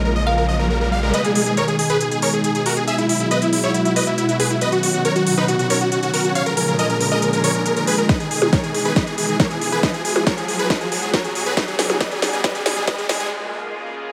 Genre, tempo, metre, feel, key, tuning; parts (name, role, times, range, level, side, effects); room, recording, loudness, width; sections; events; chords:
uplifting trance; 138 BPM; 4/4; straight; G# minor; A4 = 440 Hz
glassy wavetable pluck; second line; 0.0-1.0 s; D#5 to E#5; -29 LUFS; equal; chorus, dub echo
lush unison pad; sustained chords; 0.0-14.1 s; A#2 to G#4; -26 LUFS; equal; chorus, sidechain pumping
plucky analog bass; bass; 0.0-1.1 s; A#1; -24 LUFS; equal; sidechain pumping
riser; sound effects; 0.0-13.3 s; -30 LUFS; equal
supersaw chords; melody; 0.1-13.3 s; D#4 to E#5; -23 LUFS; equal; sidechain pumping, delay
techno drum kit; drums; 1.1-13.3 s; hi-hat, percussion blips, snare drum; -26 LUFS; equal; high-pass filter on hats, low-pass filter on hats, high-pass filter on snare, low-pass filter on snare, high-pass filter on perc, low-pass filter on perc, high-pass filter on room, low-pass filter on room
electronic kick drum; drums; 8.1-13.0 s; -22 LUFS; equal; overdrive
moderate lush hall reverb, RT60 2.2 s; high-pass filter; -19 LUFS; mono
0.0-1.1 A section; 1.1-14.1 B section
riser 0.0-1.1, 1.1-13.3; filter sweep on analog synth pad 0.0-1.1; build-up 1.1-14.1; drum fill 8.1-13.3; break 13.3-14.1
0.0 A#m7; 1.1 G#m; 2.9 Eadd9; 4.6 Badd9; 6.4 A#m7; 8.1 G#m; 9.8 Eadd9; 11.6 Badd9; 13.3 A#m7